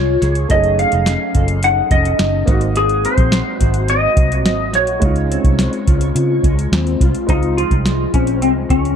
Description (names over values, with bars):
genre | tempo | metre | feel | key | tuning
indie pop, bedroom pop | 106 BPM | 4/4 | straight | Db major | A4 = 441 Hz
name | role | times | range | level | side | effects
clean lap steel guitar | melody | 0.0-9.0 s | C4 to Gb5 | -18 LUFS | left 1 dB | analog chorus, tape echo
clear upright piano | accompaniment | 0.0-9.0 s | Ab3 to C5 | -26 LUFS | right 4 dB | cassette tape
electric guitar through a small old amp | accompaniment | 0.0-9.0 s | Ab2 to A4 | -22 LUFS | left 4 dB | ensemble chorus, vibrato effect
vintage muted fingered electric bass | bass | 0.0-9.0 s | F1 to Db3 | -18 LUFS | right 1 dB | none
soft vintage rhythm box | drums | 0.2-9.0 s | hi-hat, kick drum, snare drum | -17 LUFS | equal | overdrive
room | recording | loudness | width
light reverb | dark, warm production | -13 LUFS | side -8 dB against mid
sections
0.0-7.3 A section; 7.3-9.0 B section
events
electric slide guitar solo 7.3-9.0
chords
0.0 Dbmaj7; 0.5 Gbm6; 2.5 Ab7; 5.0 Dbmaj7